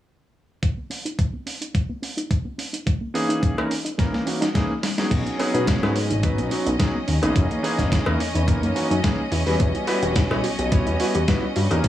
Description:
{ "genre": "nu-disco, nu disco", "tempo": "107 BPM", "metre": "4/4", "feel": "swing 53% on 16ths", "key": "B major", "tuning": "A4 = 440 Hz", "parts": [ { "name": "soft round pluck", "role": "arpeggios", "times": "0.6-11.9 s", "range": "G#3 to G4", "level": "-30 LUFS", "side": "right 1 dB", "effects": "chorus, sidechain pumping, analog delay" }, { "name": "dusty soul sampler-style drum kit", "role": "drums", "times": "0.6-11.9 s", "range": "crash cymbal, hi-hat, snare drum", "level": "-29 LUFS", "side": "left 1 dB", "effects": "overdrive" }, { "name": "electronic kick drum", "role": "drums", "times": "0.6-11.9 s", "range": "none", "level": "-22 LUFS", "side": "equal", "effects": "none" }, { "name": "warm electric grand piano", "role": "accompaniment", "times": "3.1-11.9 s", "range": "E3 to C#5", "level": "-25 LUFS", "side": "equal", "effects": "slapback echo" }, { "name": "cowbell", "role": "percussion", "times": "3.6-11.8 s", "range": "none", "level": "-31 LUFS", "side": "left 4 dB", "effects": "none" }, { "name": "rich symphonic string section", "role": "sustained chords", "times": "5.1-11.9 s", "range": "C#4 to D#5", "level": "-29 LUFS", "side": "equal", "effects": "sidechain pumping" }, { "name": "fat analog bass", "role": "bass", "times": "5.1-11.9 s", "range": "E1 to B2", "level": "-23 LUFS", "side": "left 1 dB", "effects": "none" } ], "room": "light reverb, digital ambience", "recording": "small room ambience", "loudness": "-20 LUFS", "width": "side -12 dB against mid", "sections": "0.6-5.1 A section; 5.1-11.9 B section", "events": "filter sweep on synth arpeggio sound 0.6-5.1; drum fill 4.0-5.1", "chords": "0.6 B69; 2.9 F#13 (rootless); 4.8 B69; 7.4 F#13; 9.3 Emadd9" }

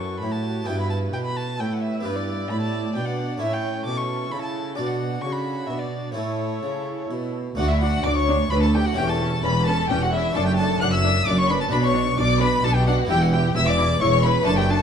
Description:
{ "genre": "classical, baroque-style concerto movement with solo episodes", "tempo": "131 BPM", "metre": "3/4", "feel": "straight", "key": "D major", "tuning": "A4 = 440 Hz", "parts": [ { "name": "rich chamber violin section", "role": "melody", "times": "0.0-14.8 s", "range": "G4 to F#6", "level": "-32 LUFS", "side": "left 2 dB", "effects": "none" }, { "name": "rich violin", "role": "melody", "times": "0.0-14.8 s", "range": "B4 to F#6", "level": "-28 LUFS", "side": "left 2 dB", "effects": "none" }, { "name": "rich chamber violin section", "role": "second line", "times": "0.0-14.8 s", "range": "E4 to F#5", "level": "-28 LUFS", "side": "left 3 dB", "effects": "none" }, { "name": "harpsichord", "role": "accompaniment", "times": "0.0-14.8 s", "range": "D2 to D5", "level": "-29 LUFS", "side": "right 1 dB", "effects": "none" }, { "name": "rich chamber viola section", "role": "accompaniment", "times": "0.0-14.8 s", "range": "C#4 to F#4", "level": "-31 LUFS", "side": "equal", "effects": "none" }, { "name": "rich studio cello section", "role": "bass", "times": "0.0-14.8 s", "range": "D2 to C#3", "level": "-25 LUFS", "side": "right 1 dB", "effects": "none" }, { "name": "rich chamber double bass section", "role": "bass", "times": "7.6-14.8 s", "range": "E1 to D2", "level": "-24 LUFS", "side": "right 2 dB", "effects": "none" } ], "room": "moderate stone room reverb, RT60 1.1 s", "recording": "dark, warm production", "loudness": "-20 LUFS", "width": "side -7 dB against mid", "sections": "0.0-7.6 A section; 7.6-14.8 B section", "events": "none", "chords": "0.0 Em; 0.7 Em/G; 2.0 G; 3.4 A; 4.8 Bm; 6.2 A; 7.6 D5; 9.0 A7/E; 10.4 D/F#; 11.7 Bm; 13.1 Em" }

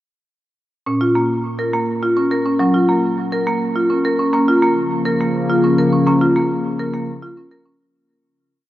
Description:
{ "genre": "world meditative, meditative tuned percussion", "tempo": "69 BPM (dotted quarters)", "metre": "6/8", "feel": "straight", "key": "Bb minor", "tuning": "A4 = 438 Hz", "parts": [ { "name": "marimba with hard mallets", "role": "arpeggios", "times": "0.9-7.8 s", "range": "Bb2 to Bb4", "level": "-15 LUFS", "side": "equal", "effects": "diffuse ambient delay" }, { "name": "warbly tape-like pad", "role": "sustained chords", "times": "4.7-7.8 s", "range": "Db3 to Bb3", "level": "-20 LUFS", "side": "left 2 dB", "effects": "chorus, built-in reverb" } ], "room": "wet cathedral reverb, RT60 4.5 s", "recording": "worn, warbling old tape, cassette tape, warbly pitch drift", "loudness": "-15 LUFS", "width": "side -14 dB against mid", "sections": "0.9-7.8 A section", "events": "fade-out 6.1-7.8", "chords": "0.9 Bbm; 2.6 Gb; 4.3 Bbm" }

